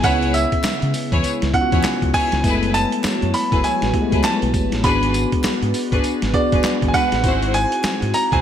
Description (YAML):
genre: R&B, new jack swing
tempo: 100 BPM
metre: 4/4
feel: swing 61% on 16ths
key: F# minor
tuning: A4 = 441 Hz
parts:
  - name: clear grand piano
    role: melody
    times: 0.0-8.4 s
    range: D5 to B5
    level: -22 LUFS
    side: right 2 dB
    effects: none
  - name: tine electric piano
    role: accompaniment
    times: 0.0-8.4 s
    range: G#3 to G#4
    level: -23 LUFS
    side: left 3 dB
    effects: medium stereo tremolo
  - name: phased analog pad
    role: sustained chords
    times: 0.0-8.4 s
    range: C#3 to C#5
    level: -28 LUFS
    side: right 3 dB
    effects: phaser, chorus
  - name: warm symphonic string section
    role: stabs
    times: 0.0-8.4 s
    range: D4 to C#5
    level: -26 LUFS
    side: left 2 dB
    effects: none
  - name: deep dub fingered electric bass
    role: bass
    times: 0.0-8.4 s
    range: F#1 to C#3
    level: -23 LUFS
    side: equal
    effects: none
  - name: boom bap sampler-style drum kit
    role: drums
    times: 0.0-8.4 s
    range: handclaps, hi-hat, kick drum, snare drum, tambourine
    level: -22 LUFS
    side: equal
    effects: gated reverb
  - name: group handclap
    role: percussion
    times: 0.6-8.0 s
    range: none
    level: -38 LUFS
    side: left 5 dB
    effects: none
room: moderate plate reverb, RT60 1.9 s, digital ambience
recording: bright 1980s-style digital production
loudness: -16 LUFS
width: side -9 dB against mid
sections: 0.0-8.4 A section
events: none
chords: 0.0 C#m7; 2.4 F#m11; 4.8 G#m7b5; 7.2 G#7b13